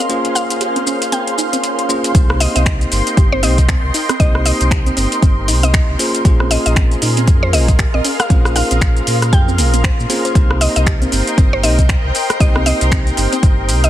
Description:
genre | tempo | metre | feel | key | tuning
deep house | 117 BPM | 4/4 | swing 59% on 16ths | C phrygian | A4 = 440 Hz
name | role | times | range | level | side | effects
mallet-like synth pluck | melody | 0.0-13.9 s | C5 to G5 | -22 LUFS | equal | chorus, tape echo
soft string machine | sustained chords | 0.0-13.9 s | Db4 to C6 | -24 LUFS | equal | ensemble chorus, sidechain pumping
soft round pluck | arpeggios | 0.0-13.4 s | Bb3 to C5 | -26 LUFS | right 2 dB | chorus, sidechain pumping, tape echo
deep house drum kit | drums | 0.0-13.9 s | finger snaps, hi-hat, rim click, shaker | -20 LUFS | equal | soft clipping on snare
ethereal airy pad | texture | 0.0-13.9 s | Bb4 to C6 | -24 LUFS | equal | ensemble chorus, built-in reverb, tremolo, sidechain pumping
bell-like tine electric piano | stabs | 0.1-13.9 s | Bb3 to C5 | -23 LUFS | equal | vintage 12-bit sampler grit, sidechain pumping, tape echo
sub bass with octave | bass | 2.1-13.9 s | G1 to Bb2 | -16 LUFS | equal | sidechain pumping
electronic kick drum | drums | 2.1-13.6 s | none | -13 LUFS | equal | none
room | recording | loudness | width
little or no reverb | dense, heavily limited modern master | -12 LUFS | side -12 dB against mid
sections
0.0-2.1 A section; 2.1-13.9 B section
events
filter sweep on string machine 0.0-2.1; filter sweep on synth arpeggio sound 0.0-2.1; drop 2.1-13.9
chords
0.0 Bbm7; 2.1 Cm7; 6.0 Bbm7; 10.4 Cm7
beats
| 0.10 0.61 1.12 1.64 | 2.15 2.66 3.17 3.69 | 4.20 4.71 5.22 5.74 | 6.25 6.76 7.28 7.79 | 8.30 8.81 9.33 9.84 | 10.35 10.87 11.38 11.89 | 12.40 12.92 13.43

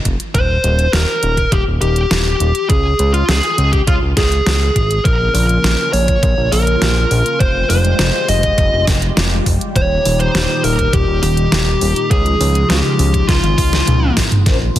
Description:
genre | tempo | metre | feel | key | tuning
synthwave | 102 BPM | 4/4 | straight | unclear | A4 = 440 Hz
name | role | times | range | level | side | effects
fat analog bass | bass | 0.1-14.8 s | Eb1 to Db2 | -16 LUFS | equal | sidechain pumping
electronic kick drum | drums | 0.1-14.6 s | none | -17 LUFS | equal | none
pop drum kit | drums | 0.1-14.8 s | hi-hat, snare drum, toms | -19 LUFS | equal | overdrive
fuzz lead guitar | melody | 0.3-14.1 s | F4 to Eb5 | -17 LUFS | left 1 dB | distortion, digital delay
phased analog pad | sustained chords | 5.0-14.8 s | Bb2 to C5 | -22 LUFS | right 1 dB | phaser, chorus, sidechain pumping
mellow synth brass | stabs | 14.5-14.6 s | Db4 to C5 | -23 LUFS | left 4 dB | chorus
riser | sound effects | 14.7-14.8 s | none | barely audible | none | none
room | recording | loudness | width
light reverb | dense, heavily limited modern master | -12 LUFS | side -13 dB against mid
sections
0.0-14.5 A section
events
drum fill 13.3-14.5, 14.5-14.8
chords
0.3 Eb; 2.7 Db5; 5.1 Bbm; 7.4 Fmadd9; 9.8 Eb; 12.1 Dbadd9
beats
| 0.34 0.93 1.52 2.11 | 2.70 3.29 3.88 4.46 | 5.05 5.64 6.23 6.82 | 7.40 7.99 8.58 9.17 | 9.76 10.35 10.93 11.52 | 12.11 12.70 13.29 13.88 | 14.46

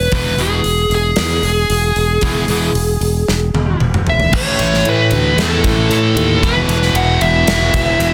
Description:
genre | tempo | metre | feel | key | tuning
hard rock | 114 BPM | 4/4 | straight | E major | A4 = 442 Hz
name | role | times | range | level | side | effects
dark smooth lead guitar | melody | 0.0-8.1 s | G#4 to F#5 | -19 LUFS | equal | overdrive
modern bright fingered electric bass | bass | 0.0-8.1 s | E1 to A2 | -20 LUFS | equal | none
sludgy distorted guitar | riff | 0.1-8.1 s | E2 to A3 | -20 LUFS | equal | overdrive
gated 80s drum kit | drums | 0.1-8.1 s | crash cymbal, hi-hat, kick drum, ride cymbal, snare drum, toms | -21 LUFS | equal | none
room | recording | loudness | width
light reverb, small room ambience | dense, heavily limited modern master | -14 LUFS | mono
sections
0.0-4.3 A section; 4.3-8.1 B section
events
drum fill 3.3-4.3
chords
0.0 E; 4.3 A; 6.4 E5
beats
| 0.12 0.65 1.18 1.70 | 2.23 2.75 3.28 3.81 | 4.33 4.85 5.38 5.90 | 6.42 6.95 7.47 7.99

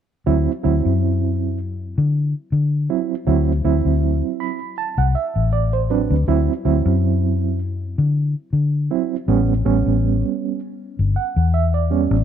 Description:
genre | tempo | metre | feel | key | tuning
straight-eighth soul blues | 80 BPM | 4/4 | swing 54% on 16ths | D mixolydian | A4 = 441 Hz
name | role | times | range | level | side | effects
barky reed electric piano | accompaniment | 0.3-12.2 s | F#3 to B5 | -21 LUFS | right 11 dB | overdrive, fast tremolo
vintage muted fingered electric bass | bass | 0.3-12.2 s | G1 to D3 | -18 LUFS | left 2 dB | none
room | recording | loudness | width
light reverb, digital ambience | none | -17 LUFS | side -9 dB against mid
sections
0.3-12.2 A section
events
reed electric piano fill 4.0-6.3, 10.8-12.2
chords
0.3 D7; 9.3 A7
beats
| 0.26 1.02 1.77 2.52 | 3.27 4.02 4.78 5.53 | 6.28 7.03 7.78 8.53 | 9.28 10.04 10.79 11.54

